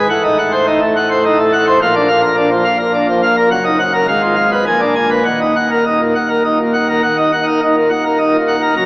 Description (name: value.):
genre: classical, organ toccata.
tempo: 104 BPM.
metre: 3/4.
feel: straight.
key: Eb minor.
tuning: A4 = 440 Hz.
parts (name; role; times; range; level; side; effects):
pipe organ, plenum; solo; 0.0-8.9 s; Eb1 to Bb5; -11 LUFS; equal; none.
room: wet church reverb, RT60 3.2 s.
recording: AM radio sound.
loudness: -11 LUFS.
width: side -25 dB against mid.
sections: 0.0-7.0 A section; 7.0-8.9 A section.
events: none.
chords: 0.1 Adim7; 1.8 Bb; 3.5 Ebm/Gb; 4.1 Fdim/Ab; 4.7 Bb7b9; 5.3 Ebm.